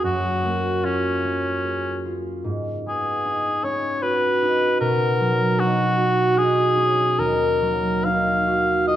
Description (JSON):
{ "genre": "classical, impressionist duo for cor anglais and harp", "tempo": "75 BPM", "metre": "3/4", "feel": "rubato", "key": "unclear", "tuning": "A4 = 439 Hz", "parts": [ { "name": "warm cor anglais", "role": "melody", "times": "0.0-9.0 s", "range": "Db4 to F5", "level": "-21 LUFS", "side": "left 1 dB", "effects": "none" }, { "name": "concert harp", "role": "accompaniment", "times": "0.0-9.0 s", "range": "Eb2 to Ab4", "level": "-22 LUFS", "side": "right 2 dB", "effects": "none" } ], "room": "wet recital hall reverb, RT60 1.7 s", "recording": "none", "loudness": "-19 LUFS", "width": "side -12 dB against mid", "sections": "0.0-9.0 A section", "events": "none", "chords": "0.0 Gbmaj9; 2.5 Abm11; 4.8 Bmaj9; 7.2 Ebmadd9", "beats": "| 0.04 0.85 1.66 | 2.47 3.26 4.03 | 4.80 5.59 6.38 | 7.19 8.06 8.88" }